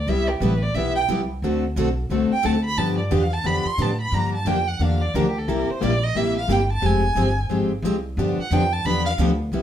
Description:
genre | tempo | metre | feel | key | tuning
acoustic string swing (jazz manouche) | 178 BPM | 4/4 | swing 61% on 8ths | unclear | A4 = 440 Hz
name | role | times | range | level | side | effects
warm violin | melody | 0.0-9.1 s | G4 to C6 | -25 LUFS | right 2 dB | none
upright bass | bass | 0.0-9.6 s | F1 to A2 | -24 LUFS | equal | none
picked plugged-in steel-string acoustic guitar | accompaniment | 0.1-9.6 s | C3 to A4 | -24 LUFS | left 4 dB | none
picked steel-string acoustic guitar | accompaniment | 0.1-9.6 s | C3 to A4 | -28 LUFS | right 3 dB | none
room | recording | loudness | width
wet studio reverb, RT60 0.6 s | heard from further back in the room | -19 LUFS | side -10 dB against mid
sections
0.0-9.5 A section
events
violin solo 0.0-9.5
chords
0.1 Cmaj7; 1.4 D7; 2.8 G7; 4.1 Gm7; 5.5 C7; 6.8 Fmadd9; 8.2 G7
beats
| 0.07 0.41 0.75 1.09 | 1.42 1.76 2.10 2.44 | 2.77 3.11 3.45 3.79 | 4.12 4.46 4.80 5.13 | 5.47 5.81 6.15 6.48 | 6.82 7.16 7.50 7.83 | 8.17 8.51 8.85 9.18 | 9.52

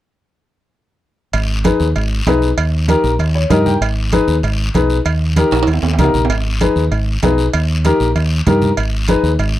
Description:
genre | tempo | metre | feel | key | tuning
latin, cumbia | 194 BPM | 4/4 | straight | G# harmonic minor | A4 = 444 Hz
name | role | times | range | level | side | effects
deep dub fingered electric bass | bass | 1.3-9.6 s | G#1 to G2 | -16 LUFS | equal | none
congas | percussion | 1.3-9.5 s | none | -19 LUFS | right 2 dB | none
cowbell and timbales | percussion | 1.3-9.5 s | none | -22 LUFS | right 8 dB | none
guiro | percussion | 1.3-9.6 s | none | -29 LUFS | left 4 dB | none
dark upright piano | accompaniment | 1.6-9.3 s | D#4 to G5 | -16 LUFS | left 3 dB | none
room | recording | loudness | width
little or no reverb | dry, close 1970s-style studio recording | -13 LUFS | side -14 dB against mid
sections
1.3-9.6 A section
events
upright piano fill 3.2-3.8; drum fill 5.5-6.3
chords
1.3 G#m; 2.6 D#; 3.8 G#m; 5.1 D#; 6.3 G#m; 7.5 D#; 8.8 G#m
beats
| 1.33 1.64 1.95 2.26 | 2.57 2.88 3.19 3.50 | 3.81 4.12 4.44 4.75 | 5.06 5.37 5.68 5.99 | 6.30 6.61 6.92 7.23 | 7.54 7.84 8.15 8.46 | 8.77 9.08 9.39

